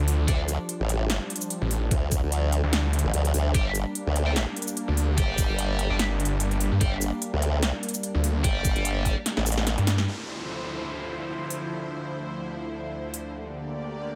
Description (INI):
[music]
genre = heavy wobble dubstep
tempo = 147 BPM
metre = 4/4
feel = swing 55% on 16ths, half-time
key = D minor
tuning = A4 = 439 Hz
[part]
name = supersaw pad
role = sustained chords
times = 0.0-14.2 s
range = D2 to D5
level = -35 LUFS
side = equal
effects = phaser, sidechain pumping, low-pass filter
[part]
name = snarling distorted saw bass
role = bass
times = 0.0-10.1 s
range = G1 to G2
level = -27 LUFS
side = equal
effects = distortion, overdrive
[part]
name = big-room dance drum kit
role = drums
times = 0.1-13.2 s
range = hi-hat, shaker, snare drum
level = -32 LUFS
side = equal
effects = overdrive
[part]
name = heavy high-gain guitar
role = stabs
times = 0.3-0.4, 3.5-9.1 s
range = D4 to G5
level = -36 LUFS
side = equal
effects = distortion, delay
[part]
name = formant-sweep wobble bass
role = bass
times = 0.3-9.8 s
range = G1 to D2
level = -28 LUFS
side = equal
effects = chorus, overdrive
[part]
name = electronic kick drum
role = drums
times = 0.3-9.1 s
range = none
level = -27 LUFS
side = equal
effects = none
[part]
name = downlifter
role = sound effects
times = 10.1-13.3 s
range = none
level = -41 LUFS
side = equal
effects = none
[sound]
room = little or no reverb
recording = none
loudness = -27 LUFS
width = mono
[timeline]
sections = 0.0-10.1 A section; 10.1-14.2 B section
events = drop 0.0-10.1; drum fill 9.3-10.1; band accent 10.0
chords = 0.0 Dm; 3.5 Gm; 10.1 Dm7; 13.3 Gm/D